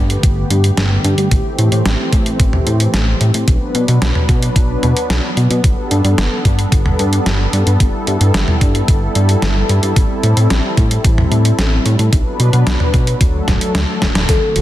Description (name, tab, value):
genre	synthwave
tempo	111 BPM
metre	4/4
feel	straight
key	G major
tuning	A4 = 438 Hz
part	warm analog pad	sustained chords	0.0-14.6 s	D3 to B4	-20 LUFS	left 1 dB	chorus, sidechain pumping
part	chorused synth bass	bass	0.0-14.6 s	D1 to B2	-15 LUFS	equal	sidechain pumping
part	detuned 8-bit digital drum machine	drums	0.1-14.6 s	hi-hat, snare drum, toms	-19 LUFS	equal	none
part	electronic kick drum	drums	0.2-14.4 s	none	-14 LUFS	equal	none
part	warm velvety synth lead	melody	14.3-14.6 s	A4	-16 LUFS	left 3 dB	chorus
part	warbly dusty pluck	arpeggios	14.3-14.6 s	none	barely audible	none	none
room	moderate recital hall reverb, RT60 1.6 s, digital ambience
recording	dense, heavily limited modern master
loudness	-12 LUFS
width	side -14 dB against mid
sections	0.0-14.3 A section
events	drum fill 14.0, 14.3-14.6; band accent 14.2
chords	0.0 Gadd9; 1.3 Am7; 3.5 Bm; 5.6 Gadd9; 10.0 Am7; 12.1 Bm; 13.2 D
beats	0.23 0.78 | 1.32 1.86 2.40 2.94 | 3.48 4.02 4.56 5.10 | 5.64 6.18 6.72 7.26 | 7.80 8.34 8.88 9.42 | 9.96 10.51 11.05 11.59 | 12.13 12.67 13.21 13.75 | 14.29